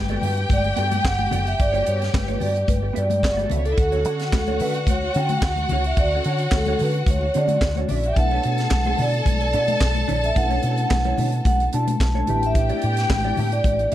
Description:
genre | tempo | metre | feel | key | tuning
disco | 110 BPM | 4/4 | straight | D major | A4 = 438 Hz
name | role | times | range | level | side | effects
vibraphone with soft mallets | melody | 0.0-13.9 s | A4 to A5 | -24 LUFS | right 1 dB | none
rich studio violin section | second line | 0.0-13.9 s | G3 to A5 | -28 LUFS | left 1 dB | none
picked electric bass with an envelope filter | bass | 0.0-13.9 s | F#1 to D3 | -24 LUFS | equal | none
mellow electric guitar | accompaniment | 0.1-13.9 s | B3 to E5 | -32 LUFS | right 5 dB | analog chorus
tight funk drum kit | drums | 0.1-13.9 s | handclaps, hi-hat, kick drum, snare drum | -23 LUFS | equal | none
congas | percussion | 0.1-13.8 s | none | -30 LUFS | left 6 dB | none
mellow tine electric piano | accompaniment | 8.2-13.9 s | A3 to B4 | -31 LUFS | left 2 dB | medium stereo tremolo
room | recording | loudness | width
small room reverb | dark, warm production | -18 LUFS | side -13 dB against mid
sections
0.0-13.9 A section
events
none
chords
0.0 Gmaj9; 3.8 Dmaj7; 8.2 Bm11; 12.3 A9sus4

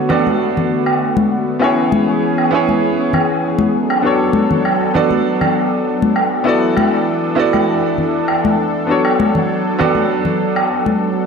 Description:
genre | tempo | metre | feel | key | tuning
sunset chillout | 99 BPM | 4/4 | straight | B dorian | A4 = 443 Hz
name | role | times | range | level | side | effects
bright baby grand piano | accompaniment | 0.0-11.3 s | B3 to D5 | -17 LUFS | moving between left 3 dB and right 5 dB | auto-pan, low-pass filter, digital delay
lush unison pad | sustained chords | 0.0-11.3 s | D3 to A4 | -18 LUFS | equal | chorus, vintage 12-bit sampler grit
woodblock | drums | 0.1-10.7 s | none | -21 LUFS | right 1 dB | low-pass filter on snare, low-pass filter on perc, low-pass filter on room
congas | percussion | 0.1-11.0 s | none | -20 LUFS | left 3 dB | none
room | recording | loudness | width
wet lush hall reverb, RT60 1.8 s, small room ambience | dark, warm production | -13 LUFS | side -5 dB against mid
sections
0.0-11.3 A section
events
none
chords
0.0 Bm7; 1.6 C#m7; 3.7 Bm7; 6.5 E7sus4; 8.9 Bm7

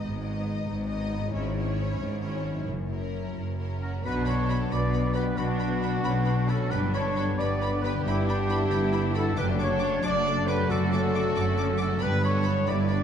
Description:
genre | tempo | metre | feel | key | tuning
cinematic, heroic adventure film score | 90 BPM (dotted quarters) | 6/8 | straight | B minor from 4.0 s | A4 = 439 Hz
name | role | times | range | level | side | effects
rich symphonic violin section | melody | 0.0-13.0 s | A#4 to D6 | -38 LUFS | left 3 dB | none
rich studio violin section | second line | 0.0-13.0 s | D4 to B4 | -39 LUFS | left 3 dB | none
clear symphonic viola section | accompaniment | 0.0-13.0 s | B3 to F#4 | -36 LUFS | left 1 dB | none
concert harp | arpeggios | 0.0-13.0 s | F#2 to D6 | -35 LUFS | left 7 dB | none
clear symphonic cello section | bass | 0.0-13.0 s | F#2 to B2 | -31 LUFS | right 1 dB | none
clear symphonic double bass section | bass | 0.0-13.0 s | F#1 to B1 | -30 LUFS | right 2 dB | none
clear clarinet | second line | 3.8-13.0 s | F#4 to D5 | -36 LUFS | left 1 dB | none
clear oboe | second line | 3.8-13.0 s | F#4 to D5 | -36 LUFS | right 2 dB | none
mellow trumpet section | stabs | 3.8-13.0 s | F#4 to D5 | -32 LUFS | equal | none
clear trombone section | sustained chords | 4.0-13.0 s | B2 to B3 | -36 LUFS | right 2 dB | none
warm French horn section | sustained chords | 4.0-13.0 s | D3 to D4 | -35 LUFS | left 5 dB | none
room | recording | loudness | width
wet scoring stage reverb, RT60 2.1 s | dark, warm production | -24 LUFS | side -8 dB against mid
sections
0.0-4.0 A section; 4.0-13.0 B section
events
none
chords
0.0 G#m; 1.3 C#m/G#; 2.7 F#7; 4.0 Bm; 6.7 G; 9.4 D/F#; 12.0 G

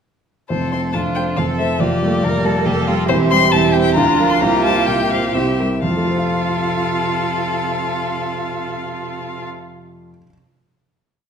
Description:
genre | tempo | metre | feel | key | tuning
quick classical-period movement for piano quintet | 122-141 BPM | 3/4 | straight | F major | A4 = 438 Hz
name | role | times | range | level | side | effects
rich violin | melody | 0.5-9.4 s | C5 to C6 | -22 LUFS | left 7 dB | none
clear violin | second line | 0.5-9.4 s | E4 to Bb4 | -24 LUFS | left 3 dB | none
clear viola | accompaniment | 0.5-9.4 s | G3 to F4 | -24 LUFS | right 5 dB | none
warm grand piano | accompaniment | 0.5-10.3 s | E1 to F5 | -20 LUFS | equal | none
rich cello | second line | 0.9-9.4 s | C3 to Bb4 | -23 LUFS | right 8 dB | none
room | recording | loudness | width
wet recital hall reverb, RT60 1.3 s | none | -15 LUFS | side -7 dB against mid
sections
0.5-5.8 A section; 5.8-8.7 final chord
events
slowing down 2.5-5.8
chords
0.5 F; 1.8 Gm7/F; 3.1 C/E; 4.0 Bb/D; 4.4 C7sus4; 5.3 C7; 5.8 F

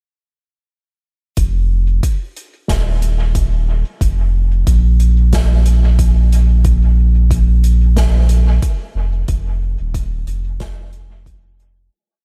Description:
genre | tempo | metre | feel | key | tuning
ambient dub | 91 BPM | 4/4 | swing 58% on 16ths | unclear | A4 = 440 Hz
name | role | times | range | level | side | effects
warm sub bass | bass | 1.4-11.9 s | Eb1 to Bb1 | -15 LUFS | equal | tube saturation
electronic kick drum | drums | 1.4-11.4 s | none | -20 LUFS | equal | none
soft-mallet drum kit | drums | 1.4-11.7 s | hi-hat, snare drum | -30 LUFS | equal | dub echo
room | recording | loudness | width
little or no reverb | none | -14 LUFS | mono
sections
1.4-11.9 groove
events
fade-out 8.4-11.9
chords
none

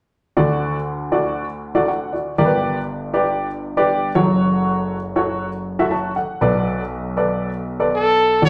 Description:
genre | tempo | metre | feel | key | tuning
soul | 119 BPM | 4/4 | straight | D major | A4 = 442 Hz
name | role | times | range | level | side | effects
dark upright piano | accompaniment | 0.4-8.5 s | F#1 to A5 | -20 LUFS | equal | none
breathy trumpet | melody | 8.0-8.5 s | A4 to C#5 | -16 LUFS | equal | none
room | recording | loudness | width
wet large studio reverb, RT60 1.0 s | band playing live in one room | -20 LUFS | mono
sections
0.4-8.4 A section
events
none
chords
0.4 D; 2.4 G; 4.1 F#m; 6.4 Bm7

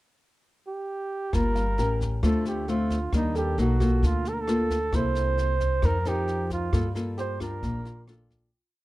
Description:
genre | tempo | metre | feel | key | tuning
bossa nova | 133 BPM | 4/4 | straight | Bb major | A4 = 441 Hz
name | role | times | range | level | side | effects
warm flugelhorn | melody | 0.7-8.0 s | Eb4 to C5 | -30 LUFS | right 3 dB | none
nylon-string guitar | accompaniment | 1.3-8.5 s | C3 to Bb4 | -29 LUFS | left 2 dB | none
upright bass | bass | 1.3-8.5 s | G1 to G2 | -27 LUFS | equal | none
jazz brush drum kit | drums | 1.3-8.4 s | kick drum, rim click, snare drum | -30 LUFS | equal | none
warm concert grand piano | accompaniment | 1.6-8.7 s | F4 to F5 | -38 LUFS | right 2 dB | none
room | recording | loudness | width
light reverb | dark, warm production | -24 LUFS | side -17 dB against mid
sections
0.0-1.3 pickup bar; 1.3-8.5 A section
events
fade-out 6.7-8.5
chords
0.0 N.C.; 1.3 Gm7; 1.8 A7b9; 2.2 Dm7; 3.1 Ebmaj7; 3.6 Bmaj7; 4.0 Bbmaj7/D; 4.9 C6; 5.8 F7sus4; 6.7 Gm9; 7.6 Bbmaj7

